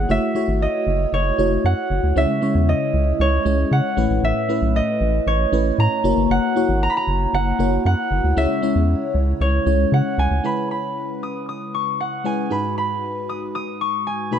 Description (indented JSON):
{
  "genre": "1980s-style pop",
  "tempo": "116 BPM",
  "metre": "4/4",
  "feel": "straight",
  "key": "C# minor",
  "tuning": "A4 = 440 Hz",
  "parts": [
    { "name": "concert harp", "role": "melody", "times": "0.0-14.4 s", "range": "C#5 to D#6", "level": "-22 LUFS", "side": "right 2 dB", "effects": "none" },
    { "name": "FM electric piano with soft pad layer", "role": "accompaniment", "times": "0.0-14.4 s", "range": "G#2 to C#5", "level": "-22 LUFS", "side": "left 2 dB", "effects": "chorus, phaser" },
    { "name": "rubbery square bass", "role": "bass", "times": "0.0-10.4 s", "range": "F#1 to C#3", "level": "-19 LUFS", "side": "equal", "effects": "none" }
  ],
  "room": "light reverb, studio reverb",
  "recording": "none",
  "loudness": "-18 LUFS",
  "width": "side -8 dB against mid",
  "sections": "0.0-10.4 A section; 10.4-14.4 B section",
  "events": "none",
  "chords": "0.1 F#m7; 2.2 C#m; 4.0 Aadd9; 6.0 F#7; 8.4 C#m; 10.4 C#m7; 12.5 G#m7",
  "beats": "| 0.09 0.61 1.13 1.64 | 2.16 2.68 3.20 3.71 | 4.23 4.75 5.26 5.78 | 6.30 6.82 7.33 7.85 | 8.37 8.88 9.40 9.92 | 10.44 10.95 11.47 11.99 | 12.51 13.02 13.54 14.06"
}